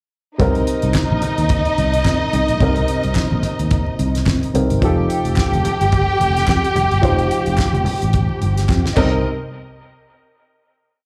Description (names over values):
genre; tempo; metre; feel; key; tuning
disco; 109 BPM; 4/4; swing 56% on 16ths; C dorian; A4 = 439 Hz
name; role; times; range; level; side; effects
warm studio string section; second line; 0.4-9.2 s; C4 to G5; -23 LUFS; equal; tape echo, plate reverb, slapback echo
warm baby grand piano; accompaniment; 0.4-9.3 s; C3 to C5; -25 LUFS; equal; none
fingered electric bass; bass; 0.4-9.2 s; F1 to C3; -22 LUFS; equal; none
damped 70s drum kit; drums; 0.4-9.1 s; crash cymbal, hi-hat, kick drum, snare drum; -22 LUFS; equal; none
congas; percussion; 0.4-9.2 s; none; -29 LUFS; equal; none
group handclap; percussion; 0.9-9.2 s; none; -34 LUFS; equal; none
room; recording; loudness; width
light reverb; live gig heard through the venue's PA, club reverb; -17 LUFS; mono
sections
0.4-9.2 groove; 9.2-11.1 final hit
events
drum fill 8.7-9.2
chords
0.4 Cm7; 4.8 F9; 9.0 Cm7; 9.2 N.C.